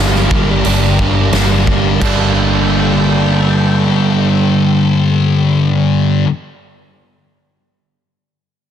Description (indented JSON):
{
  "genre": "rock, shoegaze and dream pop",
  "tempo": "88 BPM",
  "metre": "4/4",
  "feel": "straight",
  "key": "G minor",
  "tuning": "A4 = 436 Hz",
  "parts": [
    { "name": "phased string machine", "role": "sustained chords", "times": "0.0-5.5 s", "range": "G4 to A5", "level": "-23 LUFS", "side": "right 1 dB", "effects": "ensemble chorus, phaser" },
    { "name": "direct-recorded clean electric guitar", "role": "arpeggios", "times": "0.0-6.3 s", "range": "G3 to A4", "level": "-25 LUFS", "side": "right 8 dB", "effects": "lush chorus, digital delay" },
    { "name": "crunchy overdriven guitar", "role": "riff", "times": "0.0-6.3 s", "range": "G2 to D4", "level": "-16 LUFS", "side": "right 8 dB", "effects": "reverse reverb" },
    { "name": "thick fuzz guitar", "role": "riff", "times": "0.0-6.3 s", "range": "G2 to D4", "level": "-14 LUFS", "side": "left 6 dB", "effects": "distortion, lush chorus" },
    { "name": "vintage muted fingered electric bass", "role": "bass", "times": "0.0-6.2 s", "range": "G1", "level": "-18 LUFS", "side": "equal", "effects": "none" },
    { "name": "huge arena drum kit", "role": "drums", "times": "0.1-2.2 s", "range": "crash cymbal, hi-hat, kick drum, snare drum", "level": "-18 LUFS", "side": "equal", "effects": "none" }
  ],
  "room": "studio ambience",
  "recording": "dense, heavily limited modern master",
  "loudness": "-10 LUFS",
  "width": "side -9 dB against mid",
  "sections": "0.0-2.0 A section; 2.0-4.8 B section",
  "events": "none",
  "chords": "0.0 Gmadd9",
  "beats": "0.65 1.33 | 2.01 2.70 3.38 4.07"
}